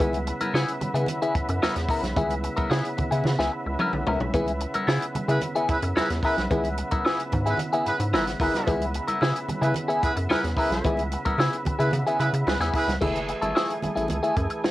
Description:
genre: funk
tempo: 111 BPM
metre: 4/4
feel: straight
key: C# minor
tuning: A4 = 438 Hz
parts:
  - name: clean electric guitar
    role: accompaniment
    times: 0.0-14.7 s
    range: A3 to A#4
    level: -26 LUFS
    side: left 2 dB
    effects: wah, cassette tape
  - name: overdriven tonewheel organ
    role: sustained chords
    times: 0.0-14.7 s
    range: C#3 to G#4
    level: -31 LUFS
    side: right 1 dB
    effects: chorus vibrato, lush chorus, cassette tape
  - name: rubbery square bass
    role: bass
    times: 0.0-14.5 s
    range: F#1 to C#3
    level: -28 LUFS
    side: equal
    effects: none
  - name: compact cocktail drum kit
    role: drums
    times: 0.0-14.7 s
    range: crash cymbal, hi-hat, kick drum, snare drum, toms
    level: -28 LUFS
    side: equal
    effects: cassette tape
  - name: congas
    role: percussion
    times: 0.0-14.7 s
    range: none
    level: -34 LUFS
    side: right 2 dB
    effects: none
  - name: warm horn section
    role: second line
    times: 5.3-12.9 s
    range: E4 to B4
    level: -28 LUFS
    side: right 2 dB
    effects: cassette tape, analog delay
room: light reverb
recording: home recording on cassette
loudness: -22 LUFS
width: side -16 dB against mid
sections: 0.0-13.0 A section; 13.0-14.7 B section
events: drum fill 3.3-4.3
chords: 0.0 C#m7; 13.0 F#m9

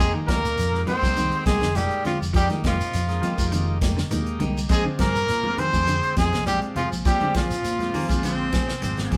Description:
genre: afrobeat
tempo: 102 BPM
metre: 4/4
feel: straight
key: F dorian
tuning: A4 = 440 Hz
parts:
  - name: clear trumpet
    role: melody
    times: 0.0-8.5 s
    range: F4 to C5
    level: -28 LUFS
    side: equal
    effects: none
  - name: raspy tenor saxophone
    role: second line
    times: 0.0-8.5 s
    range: F3 to C4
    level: -34 LUFS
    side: equal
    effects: none
  - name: overdriven combo organ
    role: accompaniment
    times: 0.0-9.2 s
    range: Ab3 to Ab4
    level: -37 LUFS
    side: equal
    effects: spring reverb
  - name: semi-hollow electric guitar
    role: arpeggios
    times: 0.0-9.2 s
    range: C3 to Ab3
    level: -33 LUFS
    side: equal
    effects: tremolo
  - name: semi-hollow electric guitar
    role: stabs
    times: 0.0-9.2 s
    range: F3 to Ab4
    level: -36 LUFS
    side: equal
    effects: spring reverb
  - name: fingered electric bass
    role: bass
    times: 0.0-9.2 s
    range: F1 to Bb2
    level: -30 LUFS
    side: equal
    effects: none
  - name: shekere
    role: percussion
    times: 0.0-9.2 s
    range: none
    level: -37 LUFS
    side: equal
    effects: none
  - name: damped 70s drum kit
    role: drums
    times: 0.3-9.2 s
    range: hi-hat, kick drum, snare drum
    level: -28 LUFS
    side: equal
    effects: none
  - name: congas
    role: percussion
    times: 0.3-9.2 s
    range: none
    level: -35 LUFS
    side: equal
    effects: none
  - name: warm baritone saxophone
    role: second line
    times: 7.9-9.2 s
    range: Bb3 to C4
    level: -33 LUFS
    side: equal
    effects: none
room: wet studio reverb, RT60 0.6 s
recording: band playing live in one room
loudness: -23 LUFS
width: mono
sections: 0.0-9.2 A section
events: none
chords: 0.0 Fm11; 4.7 Bb9

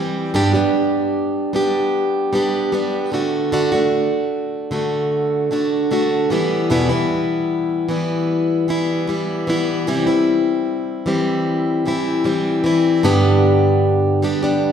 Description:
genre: pop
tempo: 76 BPM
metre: 4/4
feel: straight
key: G major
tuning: A4 = 440 Hz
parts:
  - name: picked plugged-in steel-string acoustic guitar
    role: solo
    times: 0.0-14.7 s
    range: E2 to G4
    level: -16 LUFS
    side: equal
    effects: none
room: wet scoring stage reverb, RT60 1.6 s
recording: recorded in a church or concert hall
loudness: -16 LUFS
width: side -8 dB against mid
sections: 0.0-13.1 A section; 13.1-14.7 B section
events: none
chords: 0.3 G; 3.1 D; 6.3 Em; 9.9 C; 13.1 G

